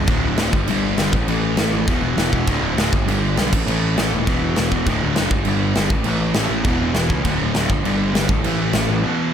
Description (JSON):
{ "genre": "punk rock", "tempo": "201 BPM", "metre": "4/4", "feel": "straight", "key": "unclear", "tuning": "A4 = 440 Hz", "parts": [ { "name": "distorted electric guitar", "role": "riff", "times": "0.0-9.3 s", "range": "D2 to A3", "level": "-25 LUFS", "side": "right 10 dB", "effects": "distortion" }, { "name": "overdriven electric guitar", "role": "riff", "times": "0.0-9.3 s", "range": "D2 to A3", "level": "-26 LUFS", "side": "equal", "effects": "none" }, { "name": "sludgy distorted guitar", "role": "riff", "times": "0.0-9.3 s", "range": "D2 to A3", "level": "-24 LUFS", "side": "left 9 dB", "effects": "overdrive" }, { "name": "fuzz picked electric bass", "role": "bass", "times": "0.0-9.0 s", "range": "D1 to C#2", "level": "-23 LUFS", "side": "equal", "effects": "overdrive" }, { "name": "big rock drum kit", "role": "drums", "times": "0.1-8.8 s", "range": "crash cymbal, kick drum, snare drum", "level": "-21 LUFS", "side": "equal", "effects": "none" } ], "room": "little or no reverb", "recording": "none", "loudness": "-16 LUFS", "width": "side -8 dB against mid", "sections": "0.1-9.3 A section", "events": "break 9.0", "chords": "0.1 D5; 0.5 G5; 1.1 A5; 1.9 E5; 2.5 D5; 2.9 G; 3.5 A5; 4.3 E5; 4.9 D; 5.3 G5; 5.9 A5; 6.7 E5; 7.3 D5; 7.7 G5; 8.3 A5" }